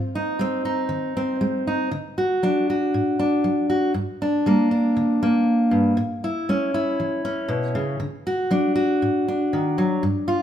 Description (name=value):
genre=folk, solo fingerstyle acoustic guitar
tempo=119 BPM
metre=4/4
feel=straight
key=unclear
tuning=A4 = 440 Hz
part: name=fingerpicked steel-string acoustic guitar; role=solo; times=0.0-10.4 s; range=G2 to F#4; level=-20 LUFS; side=equal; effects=none
room=moderate recital hall reverb, RT60 1.5 s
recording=minimal, uncompressed stereo recording, faint mains hum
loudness=-20 LUFS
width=side -10 dB against mid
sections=0.0-10.4 A section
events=none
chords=0.0 Ab; 1.9 D; 3.9 Gm; 6.0 A; 8.0 D